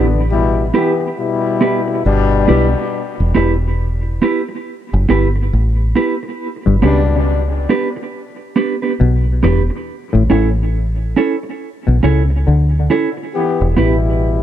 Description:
reggae; 69 BPM; 4/4; swing 62% on 16ths; E dorian; A4 = 441 Hz
bright trombone section; second line; 0.0-7.2, 13.3-14.4 s; B2 to G4; -18 LUFS; left 5 dB; tape echo
mellow electric guitar; accompaniment; 0.0-14.0 s; B3 to C#5; -18 LUFS; right 4 dB; tape echo
deep dub fingered electric bass; bass; 0.0-14.4 s; E1 to D2; -14 LUFS; equal
muted clav; riff; 6.7-12.7 s; E2 to D3; -19 LUFS; left 4 dB; tape echo
digital ambience; dry, close 1970s-style studio recording; -13 LUFS; side -11 dB against mid
0.0-13.3 A section; 13.3-14.4 B section
break 0.0-6.4
0.0 Em; 6.4 G; 9.9 A; 13.3 Em
0.31 1.18 2.05 | 2.92 3.79 4.66 5.52 | 6.39 7.26 8.13 9.00 | 9.87 10.73 11.60 12.47 | 13.34 14.20

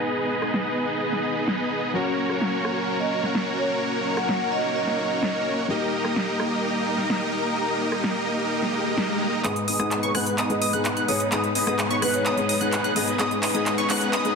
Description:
EDM, festival progressive house; 128 BPM; 4/4; straight; G# minor; A4 = 440 Hz
felt-muted upright piano; accompaniment; 0.0-14.4 s; G#2 to B4; -30 LUFS; left 4 dB; ping-pong delay
muted studio string section; sustained chords; 0.0-14.4 s; D#3 to B4; -31 LUFS; left 1 dB; low-pass filter
dense compressed supersaw; riff; 0.0-14.3 s; A#3 to F#5; -25 LUFS; equal; low-pass filter, ping-pong delay
big-room dance drum kit; drums; 0.1-14.3 s; handclaps, hi-hat, rim click, shaker, snare drum; -28 LUFS; equal; overdrive, high-pass filter on hats, low-pass filter on hats, small room ambience, high-pass filter on cymbals, low-pass filter on cymbals, high-pass filter on perc, low-pass filter on perc, high-pass filter on snare, low-pass filter on snare
vibraphone with soft mallets; melody; 3.0-5.4, 10.5-12.6 s; B4 to F#5; -29 LUFS; right 2 dB; ping-pong delay
swell and riser; sound effects; 8.7-14.4 s; -35 LUFS; right 1 dB
plucky unison lead; arpeggios; 9.4-14.3 s; C#6 to F#6; -27 LUFS; equal; ping-pong delay
moderate digital room reverb, RT60 1.0 s; dense, heavily limited modern master, high-pass filter; -22 LUFS; side -5 dB against mid
0.0-9.4 A section; 9.4-14.4 B section
swell 8.7-9.4; build-up 9.4-14.4; drum fill 9.4-14.4; filter sweep on supersaw synth 9.4-14.4
0.0 G#m; 1.9 F#; 5.7 D#; 9.4 G#m
| 0.07 0.54 1.01 1.48 | 1.94 2.41 2.88 3.35 | 3.82 4.29 4.76 5.23 | 5.69 6.16 6.63 7.10 | 7.57 8.04 8.51 8.98 | 9.44 9.91 10.38 10.85 | 11.32 11.79 12.26 12.73 | 13.19 13.66 14.13

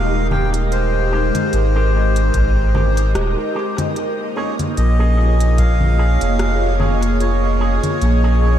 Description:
ambient dub; 74 BPM; 4/4; swing 56% on 16ths; Bb dorian; A4 = 441 Hz
melodica; melody; 0.0-8.6 s; C5 to G5; -24 LUFS; equal; dub echo
airy breathy pad; sustained chords; 0.0-8.6 s; Ab3 to Eb5; -21 LUFS; right 1 dB; chorus, phaser
warm sub bass; bass; 0.0-8.6 s; Eb1 to Bb1; -16 LUFS; equal
electric guitar with an envelope filter; stabs; 0.3-8.6 s; Ab3 to Ab4; -28 LUFS; right 3 dB; dub echo
organic electronic drum kit; drums; 0.3-8.2 s; congas, hi-hat, rim click; -26 LUFS; left 1 dB; dub echo
electronic kick drum; drums; 2.3-5.8 s; -22 LUFS; equal
light reverb; -14 LUFS; side -10 dB against mid
0.0-8.6 A section
0.0 Abmaj7; 4.0 Bbm7
| 0.72 1.53 2.34 3.15 | 3.96 4.77 5.58 6.39 | 7.21 8.02

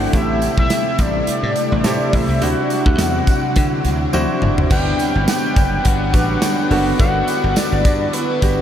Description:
1980s-style pop; 105 BPM; 4/4; swing 55% on 16ths; G major; A4 = 444 Hz
fat analog lead; melody; 0.0-8.6 s; B4 to G5; -22 LUFS; left 1 dB; diffuse ambient delay
clear concert grand piano; accompaniment; 0.0-8.6 s; G3 to A4; -23 LUFS; right 1 dB; lush chorus
string machine, violins; sustained chords; 0.0-8.6 s; C3 to E4; -23 LUFS; equal; ensemble chorus
dry thumbed slap bass; bass; 0.0-8.6 s; F#1 to D3; -20 LUFS; equal
modern studio drum kit; drums; 0.1-8.6 s; crash cymbal, hi-hat, kick drum, snare drum, tambourine, toms; -19 LUFS; equal
tambourine; percussion; 0.1-8.6 s; -35 LUFS; right 7 dB
overdriven electric guitar; accompaniment; 4.7-8.6 s; G3 to D4; -30 LUFS; left 3 dB; lush chorus
warm horn section; stabs; 4.7-8.6 s; F#3 to B4; -30 LUFS; left 2 dB; diffuse ambient delay
wet cathedral reverb, RT60 6.5 s; dreamy mix soaked in reverb; -14 LUFS; side -10 dB against mid
0.0-4.7 A section; 4.7-8.6 B section
drum fill 4.1-4.7
0.1 Am7; 2.4 D9; 4.7 Gmaj7
| 0.14 0.71 1.28 1.85 | 2.42 2.99 3.56 4.13 | 4.71 5.28 5.85 6.42 | 6.99 7.56 8.13

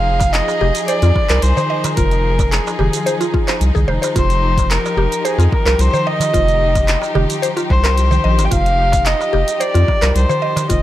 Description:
organic downtempo; 110 BPM; 4/4; straight; F dorian; A4 = 440 Hz
warm kamancheh; melody; 0.0-10.8 s; Ab4 to G5; -19 LUFS; equal; digital delay
rich studio string section; sustained chords; 0.0-10.8 s; F3 to Ab4; -24 LUFS; left 2 dB; sidechain pumping
mallet-like synth pluck; arpeggios; 0.0-10.8 s; F4 to Eb5; -22 LUFS; equal; chorus, digital delay
round analog bass; bass; 0.0-10.8 s; F1 to F2; -16 LUFS; equal; sidechain pumping
deep house drum kit; drums; 0.2-10.8 s; handclaps, hi-hat, shaker; -23 LUFS; right 1 dB
electronic kick drum; drums; 0.2-10.8 s; -19 LUFS; equal
darbuka; percussion; 0.2-10.7 s; -24 LUFS; right 2 dB
light reverb; -13 LUFS; side -13 dB against mid
0.0-10.8 A section
0.0 Fm7
0.34 0.88 1.43 | 1.97 2.52 3.06 3.61 | 4.15 4.70 5.25 5.79 | 6.33 6.88 7.43 7.97 | 8.52 9.06 9.61 10.15 | 10.70

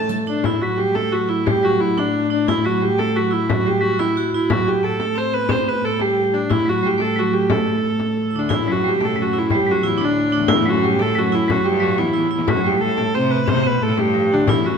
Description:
medieval dance; 120 BPM (dotted quarters); 6/8; straight; A dorian; A4 = 440 Hz
dark hurdy-gurdy; melody; 0.0-14.8 s; D4 to A5; -19 LUFS; equal
clear viola da gamba; second line; 0.0-0.1, 8.3-14.8 s; D2 to C3; -24 LUFS; left 3 dB
vibraphone with hard mallets; second line; 0.0-14.8 s; F3 to F#4; -22 LUFS; right 3 dB
warm viola da gamba; drone; 0.0-14.8 s; A2; -27 LUFS; left 1 dB
frame drum; percussion; 0.4-14.6 s; -25 LUFS; left 3 dB
wet scoring stage reverb, RT60 1.5 s; minimal, uncompressed stereo recording; -16 LUFS; side -6 dB against mid
0.4-8.5 A section; 8.5-14.8 A section
| 0.44 0.95 | 1.46 1.97 | 2.47 2.98 | 3.48 3.99 | 4.49 5.00 | 5.50 6.00 | 6.50 7.01 | 7.51 8.01 | 8.51 9.01 | 9.51 10.01 | 10.51 11.01 | 11.50 12.00 | 12.50 12.99 | 13.49 13.98 | 14.48

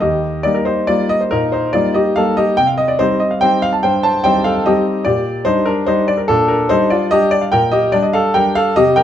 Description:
classical, piano waltz; 132-156 BPM; 3/4; rubato; G minor; A4 = 440 Hz
clear concert grand piano; solo; 0.0-9.0 s; Eb2 to A5; -12 LUFS; equal
moderate large studio reverb, RT60 1.4 s; minimal, uncompressed stereo recording; -13 LUFS; side -10 dB against mid
0.0-9.0 A section
0.0 Eb; 2.6 Cm; 5.1 Gm/Bb
| 0.01 0.44 0.88 | 1.32 1.74 2.17 | 2.58 3.00 3.42 | 3.83 4.24 4.66 | 5.06 5.46 5.88 | 6.29 6.70 7.12 | 7.53 7.93 8.35 | 8.77

